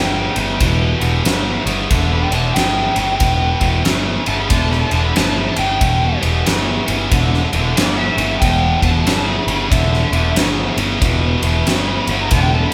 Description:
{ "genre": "blues rock power trio and southern rock", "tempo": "92 BPM", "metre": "4/4", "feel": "swing 63% on 8ths", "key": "E minor", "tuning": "A4 = 435 Hz", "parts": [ { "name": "overdriven slide guitar", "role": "melody", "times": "0.0-12.7 s", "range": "D5 to B5", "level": "-24 LUFS", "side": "equal", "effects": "none" }, { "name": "overdriven tonewheel organ", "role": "sustained chords", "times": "0.0-12.7 s", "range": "G3 to C5", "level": "-34 LUFS", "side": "equal", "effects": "none" }, { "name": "tight distorted guitar", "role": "riff", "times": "0.0-12.7 s", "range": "E2 to D3", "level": "-21 LUFS", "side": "equal", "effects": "distortion" }, { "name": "overdriven picked electric bass", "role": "bass", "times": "0.0-12.6 s", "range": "E1 to G1", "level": "-21 LUFS", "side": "equal", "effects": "none" }, { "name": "huge arena drum kit", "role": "drums", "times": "0.4-12.5 s", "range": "kick drum, ride cymbal, snare drum", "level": "-22 LUFS", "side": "equal", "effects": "none" } ], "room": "light reverb", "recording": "band playing live in one room", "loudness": "-16 LUFS", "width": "mono", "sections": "0.0-12.7 A section", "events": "electric slide guitar solo 0.0-12.7", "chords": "0.0 Em" }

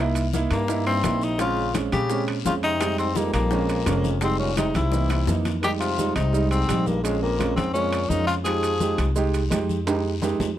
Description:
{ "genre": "Afro-Cuban jazz", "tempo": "170 BPM", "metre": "4/4", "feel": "straight", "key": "F minor", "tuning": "A4 = 444 Hz", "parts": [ { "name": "warm concert grand piano", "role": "accompaniment", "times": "0.0-10.5 s", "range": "E3 to G4", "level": "-26 LUFS", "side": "right 5 dB", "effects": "none" }, { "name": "upright bass", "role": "bass", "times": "0.0-10.6 s", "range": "F1 to Bb2", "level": "-26 LUFS", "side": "left 1 dB", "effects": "none" }, { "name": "bongos", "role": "percussion", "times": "0.2-5.5 s", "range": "none", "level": "-33 LUFS", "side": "left 7 dB", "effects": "none" }, { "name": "congas", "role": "percussion", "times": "0.2-10.6 s", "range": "none", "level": "-32 LUFS", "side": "left 4 dB", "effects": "none" }, { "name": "maracas", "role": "percussion", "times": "0.2-10.6 s", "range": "none", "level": "-40 LUFS", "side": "right 13 dB", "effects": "none" }, { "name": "timbales", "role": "percussion", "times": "0.2-10.5 s", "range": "none", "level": "-32 LUFS", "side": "right 3 dB", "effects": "none" }, { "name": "guiro", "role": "percussion", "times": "0.3-10.6 s", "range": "none", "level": "-40 LUFS", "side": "left 12 dB", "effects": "none" }, { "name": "breathy tenor saxophone", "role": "melody", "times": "0.5-9.1 s", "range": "Ab3 to Ab4", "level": "-26 LUFS", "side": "left 2 dB", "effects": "none" }, { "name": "bright trombone", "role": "second line", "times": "0.5-9.1 s", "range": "F2 to F3", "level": "-32 LUFS", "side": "left 10 dB", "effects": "none" } ], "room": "studio reverb", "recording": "dry, close 1970s-style studio recording", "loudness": "-21 LUFS", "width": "side -12 dB against mid", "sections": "0.0-5.6 A section; 5.6-10.6 A section", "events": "drum fill 4.9-5.6, 9.9-10.6", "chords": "0.0 C7#9; 1.4 Bbm7; 2.8 Fm7; 3.5 Bbm7; 4.2 Fm7; 4.9 C7#9; 5.6 Fm7; 7.0 Bbm7; 8.5 Fm7" }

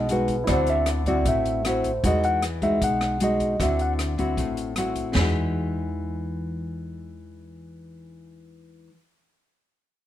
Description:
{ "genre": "bossa nova", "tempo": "154 BPM", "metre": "4/4", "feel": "straight", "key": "E major", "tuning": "A4 = 440 Hz", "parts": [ { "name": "mellow tine electric piano", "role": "melody", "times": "0.0-3.9 s", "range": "B4 to F#5", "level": "-25 LUFS", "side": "right 1 dB", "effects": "plate reverb" }, { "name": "nylon-string guitar", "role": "accompaniment", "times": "0.0-9.0 s", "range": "A2 to F#4", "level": "-27 LUFS", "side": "left 2 dB", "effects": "none" }, { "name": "warm baby grand piano", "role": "accompaniment", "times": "0.0-2.1 s", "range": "E4 to F#5", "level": "-34 LUFS", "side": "right 4 dB", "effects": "none" }, { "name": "upright bass", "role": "bass", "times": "0.0-8.9 s", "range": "A1 to E2", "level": "-28 LUFS", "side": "equal", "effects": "none" }, { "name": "open jazz drum kit", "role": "drums", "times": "0.1-5.2 s", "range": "hi-hat, kick drum, rim click, snare drum, splash cymbal, toms", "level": "-30 LUFS", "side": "equal", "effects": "none" } ], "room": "light reverb", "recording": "none", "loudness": "-22 LUFS", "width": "side -12 dB against mid", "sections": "0.0-5.2 A section; 5.2-8.3 B section", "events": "tine electric piano solo 0.0-5.2", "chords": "0.5 D9; 2.0 Emaj9; 3.6 D9; 5.2 Emaj9" }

